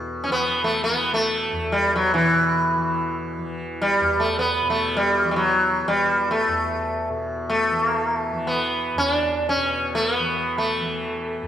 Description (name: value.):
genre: indian classical, Hindustani.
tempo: free time.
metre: none.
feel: none.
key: E raga bhimpalasi.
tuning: A4 = 440 Hz.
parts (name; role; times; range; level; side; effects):
tanpura; drone; 0.0-11.5 s; E2 to E3; -30 LUFS; left 1 dB; none.
sitar; melody; 0.2-11.5 s; E3 to D4; -20 LUFS; equal; none.
room: moderate scoring stage reverb, RT60 1.6 s.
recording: recorded in a church or concert hall.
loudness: -20 LUFS.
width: side -10 dB against mid.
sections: 0.0-11.5 A section.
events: none.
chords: none.